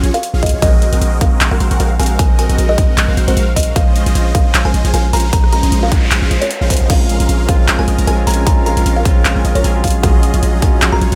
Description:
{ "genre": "future bass", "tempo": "153 BPM", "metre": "4/4", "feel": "swing 55% on 16ths, half-time", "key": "Bb minor", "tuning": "A4 = 440 Hz", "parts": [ { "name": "supersaw chords", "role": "riff", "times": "0.0-11.2 s", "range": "Gb3 to Bb5", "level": "-23 LUFS", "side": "equal", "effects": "phaser, sidechain pumping" }, { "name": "long sustained 808-style bass", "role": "bass", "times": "0.0-11.2 s", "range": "Bb1", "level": "-17 LUFS", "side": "equal", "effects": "sidechain pumping" }, { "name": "trap drum kit", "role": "drums", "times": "0.0-11.2 s", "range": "crash cymbal, handclaps, hi-hat, rim click", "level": "-22 LUFS", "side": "equal", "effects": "studio reverb" }, { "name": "kalimba", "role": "melody", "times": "0.1-11.1 s", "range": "C5 to Bb5", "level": "-24 LUFS", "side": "equal", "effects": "sidechain pumping, dub echo" }, { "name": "electronic kick drum", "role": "drums", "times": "0.4-10.7 s", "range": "none", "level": "-15 LUFS", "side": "equal", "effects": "studio reverb" }, { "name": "noise sweep", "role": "sound effects", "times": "5.5-6.9 s", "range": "none", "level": "-28 LUFS", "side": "equal", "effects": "none" }, { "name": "barky tine electric piano", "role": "accompaniment", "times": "6.9-11.2 s", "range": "Gb3 to Ab4", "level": "-24 LUFS", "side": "equal", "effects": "sidechain pumping" } ], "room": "little or no reverb", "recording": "none", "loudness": "-13 LUFS", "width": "mono", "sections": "0.0-11.2 A section", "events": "noise sweep 5.5-6.9", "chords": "0.0 Ebm11/Bb (rootless); 0.6 Ab9/Bb; 3.8 Dbmaj9/Bb; 6.9 Bbm7; 9.8 Ebm11/Bb" }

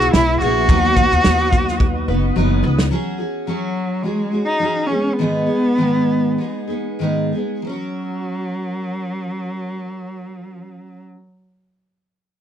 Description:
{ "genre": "acoustic pop", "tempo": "91-108 BPM", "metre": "4/4", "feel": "swing 55% on 16ths", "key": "F# mixolydian", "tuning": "A4 = 440 Hz", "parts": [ { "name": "warm cello", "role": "melody", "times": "0.0-11.0 s", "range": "F#3 to F#4", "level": "-20 LUFS", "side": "equal", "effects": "none" }, { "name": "picked steel-string acoustic guitar", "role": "accompaniment", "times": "0.0-11.2 s", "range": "G#2 to B4", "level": "-22 LUFS", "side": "equal", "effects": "double-tracked left and right" }, { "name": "tonewheel organ", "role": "sustained chords", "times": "0.0-2.9 s", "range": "B4 to E6", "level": "-31 LUFS", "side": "left 1 dB", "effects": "chorus vibrato, slow rotary speaker" }, { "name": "upright bass", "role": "bass", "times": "0.0-2.9 s", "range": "F#1 to D#2", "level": "-19 LUFS", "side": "equal", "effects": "none" }, { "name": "loose indie drum kit", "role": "drums", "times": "0.0-2.9 s", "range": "kick drum, shaker, snare drum", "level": "-18 LUFS", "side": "equal", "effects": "none" } ], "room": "little or no reverb", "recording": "none", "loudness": "-16 LUFS", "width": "side -10 dB against mid", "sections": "0.0-2.9 A section; 2.9-7.7 B section; 7.7-10.3 C section", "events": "drum fill 1.8-2.9; slowing down 2.9-7.7", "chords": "0.0 E; 0.7 B/D#; 2.9 F#sus2; 4.9 G#m; 7.7 F#" }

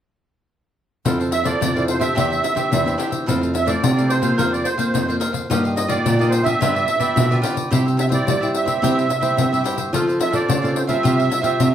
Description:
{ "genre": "samba and choro", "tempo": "108 BPM", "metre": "4/4", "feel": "straight", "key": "F major", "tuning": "A4 = 438 Hz", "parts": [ { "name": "cavaquinho", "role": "accompaniment", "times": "1.1-11.7 s", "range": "D4 to F5", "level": "-27 LUFS", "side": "right 2 dB", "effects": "none" }, { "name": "nylon-string guitar", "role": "accompaniment", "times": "1.1-11.7 s", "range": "F2 to A4", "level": "-24 LUFS", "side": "left 2 dB", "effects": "none" }, { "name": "nylon-string guitar", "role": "bass", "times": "1.1-11.7 s", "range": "E2 to G3", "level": "-22 LUFS", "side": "right 1 dB", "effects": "none" }, { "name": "pandeiro", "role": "percussion", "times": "1.1-11.7 s", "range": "none", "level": "-24 LUFS", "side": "left 4 dB", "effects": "none" }, { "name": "musette accordion", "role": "melody", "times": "1.3-11.7 s", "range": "C5 to E5", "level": "-21 LUFS", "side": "right 4 dB", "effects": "none" } ], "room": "wet studio ambience, RT60 0.5 s", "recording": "band playing live in one room", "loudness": "-17 LUFS", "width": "side -10 dB against mid", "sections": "1.1-11.7 A section", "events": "none", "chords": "1.1 Fmaj7; 2.2 Cadd9/E; 3.3 Fmaj7; 4.4 Bbsus2/F; 5.5 Ebadd9/G; 6.6 G7; 7.7 C; 9.9 F; 11.0 Csus4" }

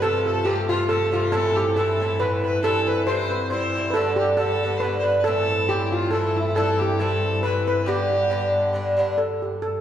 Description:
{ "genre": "celtic folk, Celtic waltz", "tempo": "138 BPM", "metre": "3/4", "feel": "swing 55% on 8ths", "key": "G mixolydian", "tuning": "A4 = 440 Hz", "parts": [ { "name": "steel pan", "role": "melody", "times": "0.0-9.8 s", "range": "E4 to C5", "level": "-23 LUFS", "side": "right 1 dB", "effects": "none" }, { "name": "rich fiddle", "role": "second line", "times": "0.0-8.7 s", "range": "E4 to C5", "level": "-28 LUFS", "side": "left 3 dB", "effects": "none" }, { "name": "Irish bouzouki", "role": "accompaniment", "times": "0.0-9.2 s", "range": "G2 to F4", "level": "-25 LUFS", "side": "right 1 dB", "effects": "none" }, { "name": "rich cello", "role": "drone", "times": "0.0-9.8 s", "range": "G2", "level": "-28 LUFS", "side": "left 2 dB", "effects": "none" } ], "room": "wet concert hall reverb, RT60 1.9 s", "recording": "recorded in a church or concert hall", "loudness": "-20 LUFS", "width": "side -10 dB against mid", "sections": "0.0-9.2 A section", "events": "none", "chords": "0.0 F; 1.3 Am; 2.6 C; 3.9 G; 5.3 Am; 6.6 C; 7.9 G; 9.2 N.C." }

